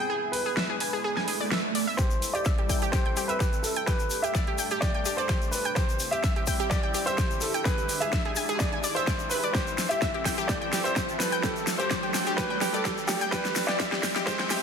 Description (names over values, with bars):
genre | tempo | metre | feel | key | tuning
progressive house | 127 BPM | 4/4 | straight | A minor | A4 = 440 Hz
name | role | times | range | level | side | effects
warm grand piano | melody | 0.0-14.6 s | G4 to E5 | -31 LUFS | equal | sidechain pumping, low-pass filter, dub echo
lush unison pad | sustained chords | 0.0-14.6 s | G3 to E5 | -36 LUFS | equal | chorus, phaser, sidechain pumping
analog pluck | arpeggios | 0.0-14.6 s | G4 to G#5 | -31 LUFS | equal | chorus, sidechain pumping, dub echo
big-room dance drum kit | drums | 0.3-14.6 s | hi-hat, snare drum | -32 LUFS | equal | overdrive, studio reverb
swell and riser | sound effects | 1.2-14.6 s | none | -36 LUFS | right 2 dB | none
electronic kick drum | drums | 2.0-14.4 s | none | -28 LUFS | equal | overdrive, studio reverb
tube shaker | percussion | 2.0-14.6 s | none | -37 LUFS | left 6 dB | none
room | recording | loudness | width
moderate digital room reverb, RT60 1.2 s | dense, heavily limited modern master, high-pass filter | -24 LUFS | side -7 dB against mid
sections
0.0-2.0 A section; 2.0-14.6 B section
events
filter sweep on drum 0.0-2.0; filter sweep on analog synth pad 0.0-2.0; swell 1.2-2.0; build-up 2.0-14.6; drum fill 2.0-14.6; riser 2.0-14.6; filter sweep on grand piano 2.0-14.6; filter sweep 2.0-14.6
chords
0.1 E7; 2.0 Am7; 3.9 Gsus2; 5.8 C; 7.7 E7; 9.5 Am7; 11.4 Gsus2; 13.3 C